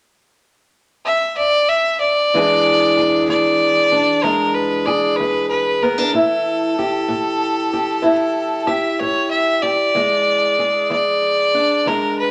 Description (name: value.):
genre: acoustic country blues, solo or duo.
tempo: 63 BPM (dotted quarters).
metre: 12/8.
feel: straight.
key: E mixolydian.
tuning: A4 = 440 Hz.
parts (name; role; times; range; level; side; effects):
clear fiddle; melody; 1.1-12.3 s; A4 to E5; -19 LUFS; equal; none.
fingerpicked steel-string acoustic guitar; accompaniment; 2.3-12.3 s; E2 to G#4; -21 LUFS; equal; none.
room: moderate studio reverb, RT60 0.8 s.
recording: none.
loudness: -17 LUFS.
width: mono.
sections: 0.0-2.3 A section; 2.3-12.3 B section.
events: none.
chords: 0.0 N.C.; 2.3 E7; 6.1 A5; 10.0 E7.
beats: 0.42 1.38 | 2.33 3.28 4.24 5.19 | 6.14 7.09 8.05 9.00 | 9.96 10.91 11.87.